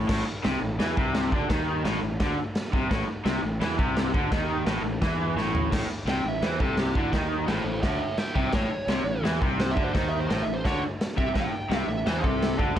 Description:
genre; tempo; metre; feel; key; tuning
garage rock duo or trio; 170 BPM; 4/4; straight; unclear; A4 = 438 Hz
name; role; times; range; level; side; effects
raw garage guitar; riff; 0.0-12.8 s; A2 to E3; -28 LUFS; left 1 dB; overdrive
fuzz fingered electric bass; bass; 0.0-12.8 s; A1 to E2; -32 LUFS; equal; overdrive
raw garage drum kit; drums; 0.1-12.8 s; crash cymbal, kick drum, snare drum, toms; -28 LUFS; equal; none
fuzz lead guitar; melody; 6.1-12.8 s; E4 to G5; -31 LUFS; right 3 dB; distortion
room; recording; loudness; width
light reverb, studio reverb; none; -24 LUFS; side -10 dB against mid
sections
0.1-5.7 A section; 5.7-12.8 B section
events
drum fill 5.4-5.7; lead electric guitar solo 5.7-12.8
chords
0.1 A5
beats
| 0.09 0.45 0.80 1.15 | 1.50 1.85 2.21 2.56 | 2.91 3.26 3.61 3.96 | 4.32 4.67 5.02 5.37 | 5.72 6.07 6.43 6.78 | 7.13 7.48 7.83 8.19 | 8.54 8.89 9.24 9.60 | 9.95 10.30 10.65 11.01 | 11.36 11.71 12.06 12.42 | 12.77

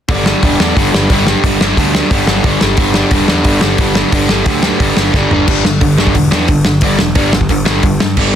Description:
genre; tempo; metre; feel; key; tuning
punk rock; 178 BPM; 4/4; straight; unclear; A4 = 440 Hz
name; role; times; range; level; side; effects
biting overdriven guitar; riff; 0.1-8.3 s; G2 to G3; -12 LUFS; equal; none
fuzz picked electric bass; bass; 0.1-8.3 s; E1 to G2; -17 LUFS; equal; overdrive
loose indie drum kit; drums; 0.1-8.2 s; crash cymbal, hi-hat, kick drum, snare drum, toms; -14 LUFS; equal; none
room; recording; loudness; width
little or no reverb; dense, heavily limited modern master; -9 LUFS; side -9 dB against mid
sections
0.1-5.5 A section; 5.5-8.4 B section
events
drum fill 5.1-5.5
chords
0.1 G5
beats
| 0.09 0.43 0.76 1.10 | 1.44 1.77 2.11 2.45 | 2.79 3.12 3.46 3.80 | 4.13 4.47 4.81 5.14 | 5.48 5.82 6.15 6.49 | 6.83 7.16 7.50 7.83 | 8.17

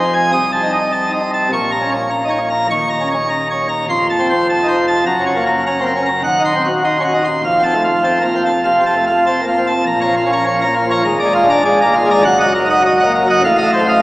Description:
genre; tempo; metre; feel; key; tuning
classical, organ toccata; 102 BPM; 4/4; straight; Bb minor; A4 = 437 Hz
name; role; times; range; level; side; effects
pipe organ, plenum; solo; 0.0-14.0 s; Eb1 to Eb6; -12 LUFS; equal; none
room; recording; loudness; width
wet church reverb, RT60 3.0 s; recorded in a church or concert hall, small speaker sound; -12 LUFS; side -18 dB against mid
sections
0.0-9.9 A section; 9.9-14.0 B section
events
none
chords
0.3 Cm6; 1.5 Bbm; 2.7 Eb5; 3.9 F7; 5.1 Gb; 6.2 Cdim/Eb; 7.4 F; 9.9 Bbm; 11.1 Bb7/Ab; 12.2 Ebm/Gb; 13.4 F7/A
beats
| 0.35 0.94 1.52 2.11 | 2.70 3.29 3.88 4.47 | 5.06 5.64 6.23 6.83 | 7.44 8.05 8.66 9.26 | 9.87 10.46 11.06 11.65 | 12.24 12.83 13.42 14.01

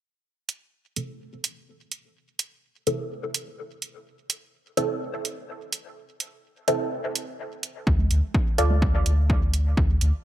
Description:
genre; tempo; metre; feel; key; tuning
dub techno; 126 BPM; 4/4; straight; A minor; A4 = 439 Hz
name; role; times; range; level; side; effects
electronic hi-hat; drums; 0.5-10.1 s; none; -27 LUFS; right 5 dB; overdrive
filtered dub chord stab; stabs; 1.0-8.9 s; C4 to D5; -27 LUFS; equal; phaser, dub echo
soft dub sub bass; bass; 7.9-10.1 s; D2; -21 LUFS; equal; sidechain pumping
electronic kick drum; drums; 7.9-9.9 s; none; -23 LUFS; equal; overdrive
congas; percussion; 8.0-8.8 s; none; -36 LUFS; right 4 dB; sidechain pumping on perc, dub echo
room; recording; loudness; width
light reverb; none; -24 LUFS; side -12 dB against mid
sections
0.2-10.2 A section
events
filter sweep on synth stab 0.2-10.2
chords
0.2 Am; 7.9 Dm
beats
| 0.25 0.73 1.20 1.68 | 2.15 2.63 3.11 3.58 | 4.06 4.54 5.01 5.49 | 5.96 6.44 6.92 7.39 | 7.87 8.35 8.82 9.30 | 9.77

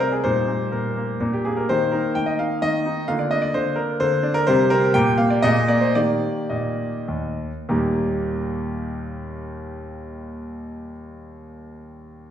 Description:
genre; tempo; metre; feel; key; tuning
classical-period piano sonatina; 99-131 BPM; 3/4; rubato; Eb major; A4 = 440 Hz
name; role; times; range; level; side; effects
warm grand piano; solo; 0.0-12.3 s; Eb2 to G5; -20 LUFS; equal; none
room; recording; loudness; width
wet recital hall reverb, RT60 1.3 s; heard from further back in the room; -19 LUFS; side -10 dB against mid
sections
0.0-7.7 A section; 7.7-11.3 B section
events
slowing down 3.8-7.7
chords
0.2 Eb/Bb; 1.2 Bb; 1.7 Eb5; 3.1 Bb/D; 4.5 C5; 4.9 Bb6; 5.4 Bb9; 6.0 Eb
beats
| 0.23 0.72 1.20 | 1.69 2.16 2.62 | 3.09 3.55 4.01 | 4.47 4.94 5.43 | 5.95 6.50 7.07 | 7.67 8.27 8.87 | 9.46 10.06 10.66

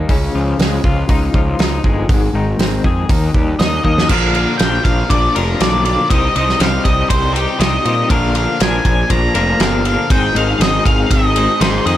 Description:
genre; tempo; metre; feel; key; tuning
quiet-loud alternative rock; 120 BPM; 4/4; straight; unclear; A4 = 440 Hz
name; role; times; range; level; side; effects
twelve-string electric guitar; arpeggios; 0.0-12.0 s; Ab2 to Bb4; -20 LUFS; left 5 dB; tremolo, tape echo
fuzz picked electric bass; bass; 0.0-12.0 s; F1 to Bb2; -18 LUFS; equal; overdrive
loose indie drum kit; drums; 0.1-12.0 s; crash cymbal, hi-hat, kick drum, ride cymbal, snare drum; -16 LUFS; right 1 dB; none
octave-fuzz lead guitar; melody; 3.6-12.0 s; G4 to Bb5; -18 LUFS; equal; distortion
room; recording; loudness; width
light reverb, small room ambience; none; -12 LUFS; side -12 dB against mid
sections
0.0-4.1 A section; 4.1-12.0 B section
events
drum fill 3.8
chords
0.1 Dbadd9; 2.1 Ab; 3.1 Eb; 4.1 Bb; 6.1 Cm; 8.1 Bb; 10.1 Ab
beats
| 0.09 0.59 1.09 1.59 | 2.09 2.59 3.09 3.59 | 4.09 4.59 5.10 5.60 | 6.10 6.60 7.10 7.60 | 8.10 8.61 9.11 9.61 | 10.11 10.61 11.11 11.61

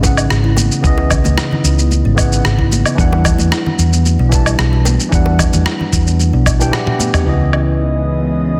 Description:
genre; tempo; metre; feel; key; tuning
sunset chillout; 112 BPM; 4/4; straight; unclear; A4 = 440 Hz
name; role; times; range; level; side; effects
tine electric piano; accompaniment; 0.0-8.6 s; C#3 to A5; -22 LUFS; equal; overdrive, delay
kalimba; arpeggios; 0.0-8.6 s; B3 to F#4; -25 LUFS; equal; low-pass filter, delay
hollow-body short-scale fingered electric bass; bass; 0.0-8.6 s; G#1 to E2; -16 LUFS; equal; none
dusty soul sampler-style drum kit; drums; 0.0-7.6 s; rim click, shaker, toms, woodblock; -21 LUFS; equal; soft clipping on snare
electronic kick drum; drums; 0.0-6.6 s; none; -18 LUFS; equal; none
bongos and congas; percussion; 0.0-7.1 s; none; -26 LUFS; equal; none
airy breathy pad; sustained chords; 7.3-8.6 s; C#3 to D#5; -22 LUFS; equal; chorus
room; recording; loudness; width
moderate lush hall reverb, RT60 1.5 s, digital ambience; dense, heavily limited modern master; -14 LUFS; mono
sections
0.0-7.3 A section; 7.3-8.6 B section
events
drum fill 6.7-7.3; filter sweep on kalimba 7.3-8.6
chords
0.0 C#m9; 3.0 Em9; 7.3 C#m9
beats
0.30 | 0.84 1.37 1.91 2.44 | 2.98 3.52 4.05 4.59 | 5.12 5.66 6.19 6.73 | 7.27 7.80 8.34

